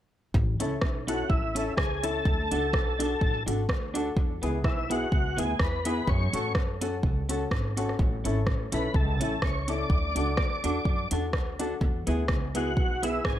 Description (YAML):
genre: ska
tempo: 126 BPM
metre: 4/4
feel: swing 55% on 8ths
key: A major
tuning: A4 = 439 Hz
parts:
  - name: upright bass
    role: bass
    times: 0.3-13.4 s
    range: G#1 to A2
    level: -31 LUFS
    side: equal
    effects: none
  - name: organic electronic drum kit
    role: drums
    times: 0.3-13.4 s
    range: hi-hat, kick drum, rim click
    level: -28 LUFS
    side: equal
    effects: none
  - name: clean electric guitar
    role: accompaniment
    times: 0.6-13.2 s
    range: B3 to A4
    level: -34 LUFS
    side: right 3 dB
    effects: tape echo
  - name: warm upright piano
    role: stabs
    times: 0.6-13.2 s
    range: B3 to A4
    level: -34 LUFS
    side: left 5 dB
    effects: tape echo
  - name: tonewheel organ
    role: melody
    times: 1.1-13.4 s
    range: E4 to D5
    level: -31 LUFS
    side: equal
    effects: chorus vibrato, slow rotary speaker
room: light reverb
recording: none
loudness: -25 LUFS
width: side -12 dB against mid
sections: 0.3-13.4 A section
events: none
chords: 0.3 A; 2.3 D; 4.2 E; 6.1 F#m; 8.0 A; 9.9 D; 11.8 E